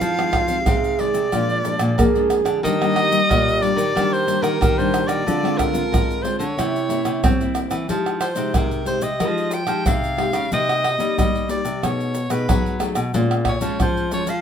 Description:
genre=samba and choro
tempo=91 BPM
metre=4/4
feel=straight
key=C minor, F minor from 7.9 s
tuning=A4 = 440 Hz
part: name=clear soprano saxophone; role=melody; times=0.0-14.4 s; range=Bb4 to G5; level=-23 LUFS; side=equal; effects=none
part: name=mellow trombone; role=second line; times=0.0-7.9 s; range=C4 to Ab4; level=-24 LUFS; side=right 6 dB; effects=none
part: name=nylon-string guitar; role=accompaniment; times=0.0-14.4 s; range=F2 to G#4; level=-25 LUFS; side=left 4 dB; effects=none
part: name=nylon-string guitar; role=bass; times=0.0-14.4 s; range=Bb2 to C4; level=-24 LUFS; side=left 1 dB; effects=none
part: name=tube shaker, surdo, pandeiro and tamborim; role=percussion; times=0.0-14.4 s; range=none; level=-23 LUFS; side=right 1 dB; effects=none
room=moderate studio reverb, RT60 0.5 s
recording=minimal, uncompressed stereo recording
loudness=-18 LUFS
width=side -8 dB against mid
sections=0.0-7.9 A section; 7.9-14.4 B section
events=none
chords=0.0 Fm7; 1.3 Bb7; 2.6 Ebmaj7; 5.3 Dm7b5; 6.6 C7b9; 7.9 Fm9; 10.5 Cm7; 11.8 B6; 13.1 Bbm7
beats=| 0.02 0.67 1.33 1.99 | 2.64 3.30 3.96 4.62 | 5.27 5.93 6.58 7.24 | 7.90 8.55 9.21 9.87 | 10.53 11.18 11.84 12.49 | 13.15 13.80

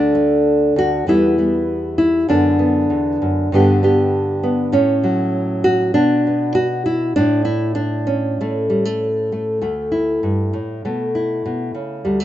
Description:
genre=folk, solo fingerstyle acoustic guitar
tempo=98 BPM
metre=4/4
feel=straight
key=D major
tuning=A4 = 440 Hz
part: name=nylon-string guitar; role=solo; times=0.0-12.2 s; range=D2 to G4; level=-15 LUFS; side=equal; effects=none
room=light reverb, studio reverb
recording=rough home demo mix, nothing above 7.8 kHz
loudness=-15 LUFS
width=side -12 dB against mid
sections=0.0-9.6 A section; 9.6-12.2 B section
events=none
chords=0.0 D5; 1.1 Em; 2.3 D6/F#; 3.5 G; 4.7 F#m/A; 5.9 N.C.; 8.4 A; 9.6 D5; 10.8 B9sus4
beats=0.46 1.07 1.69 | 2.30 2.91 3.52 4.12 | 4.73 5.34 5.95 6.56 | 7.17 7.78 8.39 9.01 | 9.62 10.24 10.85 11.46 | 12.07

